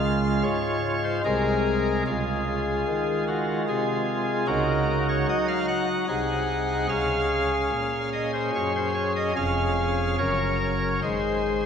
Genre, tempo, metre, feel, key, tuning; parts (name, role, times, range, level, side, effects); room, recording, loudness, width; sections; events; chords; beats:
classical, chorale-style piece for pipe organ; 74 BPM; 3/4; straight; Db major; A4 = 437 Hz
pipe organ, cornet; solo; 0.0-11.7 s; F1 to Gb5; -22 LUFS; equal
wet church reverb, RT60 2.5 s; minimal, uncompressed stereo recording; -22 LUFS; side -7 dB against mid
0.0-11.7 A section
0.0 Db; 1.2 Ab/C; 2.0 Db; 4.5 Ebm7/Db; 6.1 Ab7/C; 6.9 Db; 9.4 Db/F; 10.2 Gb; 11.0 N.C.
0.43 1.24 | 2.05 2.86 3.67 | 4.47 5.28 6.09 | 6.90 7.72 8.54 | 9.36 10.18 11.02